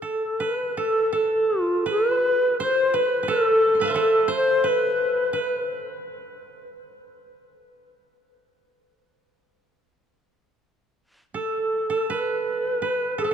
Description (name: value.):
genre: japanese traditional, Japanese chamber music.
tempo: 77-89 BPM.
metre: 4/4.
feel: rubato.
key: A hirajoshi.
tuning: A4 = 440 Hz.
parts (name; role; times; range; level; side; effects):
bright reedy long shakuhachi; melody; 0.0-5.7, 11.4-13.3 s; A4 to C5; -21 LUFS; left 1 dB; none.
koto; second line; 0.0-13.3 s; A4 to C6; -28 LUFS; right 6 dB; none.
room: wet cathedral reverb, RT60 5.1 s.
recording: dark, warm production.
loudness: -20 LUFS.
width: side -8 dB against mid.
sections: 0.4-13.3 A section.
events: none.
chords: none.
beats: | 0.41 1.13 1.88 2.59 | 3.29 3.98 4.66 5.34 | 6.04 6.74 7.42 8.11 | 8.79 9.49 10.21 10.97 | 11.72 12.46 13.18.